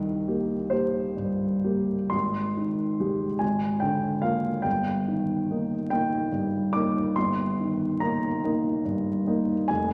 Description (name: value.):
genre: classical, romantic nocturne for solo piano.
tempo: 41-50 BPM (dotted quarters).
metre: 12/8.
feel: rubato.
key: Eb major.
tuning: A4 = 440 Hz.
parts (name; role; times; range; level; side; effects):
warm grand piano; solo; 0.0-9.9 s; F1 to D6; -26 LUFS; equal; none.
room: wet concert hall reverb, RT60 1.8 s.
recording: vinyl crackle.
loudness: -26 LUFS.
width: mono.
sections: 0.0-9.9 A section.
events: none.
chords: 0.0 Cm7; 2.1 Abmaj7; 3.4 Bb7/Ab; 4.7 Eb/G.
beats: 0.72 | 2.13 3.42 4.66 5.91 | 7.15 8.42 9.69.